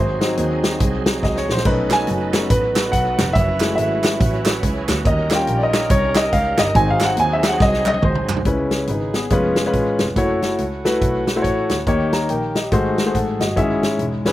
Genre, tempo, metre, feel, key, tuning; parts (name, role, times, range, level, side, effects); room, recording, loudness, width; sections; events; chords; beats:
uptempo gospel; 141 BPM; 4/4; swing 61% on 8ths; C# minor; A4 = 440 Hz
clear grand piano; accompaniment; 0.0-14.3 s; G#2 to A#5; -19 LUFS; left 1 dB
bright tonewheel organ; sustained chords; 0.0-8.4 s; F#3 to A#4; -28 LUFS; right 4 dB; fast rotary speaker, overdrive, chorus vibrato
muted French horn section; sustained chords; 0.0-14.3 s; G#3 to B4; -30 LUFS; right 2 dB
bright double bass; bass; 0.0-14.3 s; E1 to D#2; -24 LUFS; equal
swinging big-band drum kit; drums; 0.2-14.3 s; hi-hat, kick drum, snare drum, splash cymbal, toms; -21 LUFS; equal
group handclap; percussion; 1.9-8.4 s; -29 LUFS; right 6 dB
little or no reverb; recorded outdoors, with no room sound; -16 LUFS; side -15 dB against mid
0.0-8.5 A section; 8.5-14.3 B section
grand piano solo 0.0-8.5; drum fill 1.2-1.7, 7.6-8.5
0.0 G#7; 1.7 B7; 3.4 F#m7; 5.1 D#7; 6.8 G#7; 8.5 C#m7; 9.3 C#7/E#; 10.2 F#m7; 11.9 D#7; 12.7 G#7b9; 13.6 C#m/G#
0.38 0.81 1.24 | 1.66 2.08 2.51 2.94 | 3.36 3.79 4.21 4.63 | 5.06 5.49 5.91 6.33 | 6.76 7.18 7.61 8.04 | 8.46 8.89 9.31 9.74 | 10.17 10.59 11.02 11.45 | 11.87 12.30 12.73 13.15 | 13.58 14.00